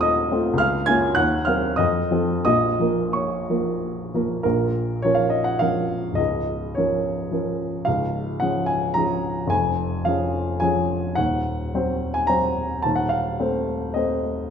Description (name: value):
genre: classical, romantic character piece for solo piano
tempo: 86-112 BPM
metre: 3/4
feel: rubato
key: Bb minor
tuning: A4 = 440 Hz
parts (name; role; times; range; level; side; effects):
- warm baby grand piano; solo; 0.0-14.5 s; Db1 to A6; -20 LUFS; equal; none
room: wet recital hall reverb, RT60 1.7 s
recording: none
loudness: -20 LUFS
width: side -7 dB against mid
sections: 0.0-4.4 A section; 4.4-14.5 B section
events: none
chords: 0.0 F7/Eb; 0.6 Bbm/Db; 1.2 Cm7b5/Eb; 1.8 F7; 2.4 Bbm; 6.2 Bbm/Db; 7.9 Db; 9.5 Db/F; 11.2 Cdim/Eb; 12.8 F7/Eb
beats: 0.04 | 0.60 1.17 1.77 | 2.43 3.12 3.79 | 4.44 5.03 5.61 | 6.19 6.76 7.31 | 7.86 8.42 8.96 | 9.52 10.07 10.62 | 11.18 11.74 12.29 | 12.83 13.40 13.96